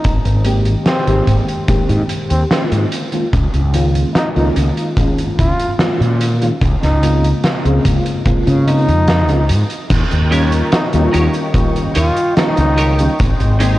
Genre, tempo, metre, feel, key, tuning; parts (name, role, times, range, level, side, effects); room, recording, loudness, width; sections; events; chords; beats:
vaporwave; 73 BPM; 4/4; straight; A4 = 440 Hz
breathy flugelhorn; melody; 0.0-13.3 s; C4 to F4; -22 LUFS; equal; tape echo
fretless electric bass; bass; 0.0-13.8 s; Ab1 to Db3; -14 LUFS; equal; analog chorus
kick drum; drums; 0.0-13.4 s; -18 LUFS; equal; vintage 12-bit sampler grit
oversized low-tuned drum kit; drums; 0.0-13.8 s; cabasa, crash cymbal, hi-hat, snare drum; -21 LUFS; equal; vintage 12-bit sampler grit
mellow FM electric piano; accompaniment; 0.4-13.8 s; Db3 to G5; -19 LUFS; left 1 dB; ensemble chorus, tape echo
lush unison pad; sustained chords; 9.9-13.8 s; Ab3 to Db6; -25 LUFS; equal; chorus
clean electric guitar; riff; 10.3-13.8 s; Eb4 to Db5; -23 LUFS; right 2 dB; ensemble chorus, tape echo
light reverb, small room reverb; cassette tape; -12 LUFS; side -16 dB against mid
0.0-9.9 A section; 9.9-13.8 B section
0.0 Abmaj7; 2.9 Db69; 6.6 Bbm9/Db; 9.9 Eb7; 13.2 Abmaj7
| 0.04 0.86 1.69 2.51 | 3.33 4.15 4.97 5.80 | 6.62 7.44 8.26 9.08 | 9.90 10.73 11.55 12.37 | 13.19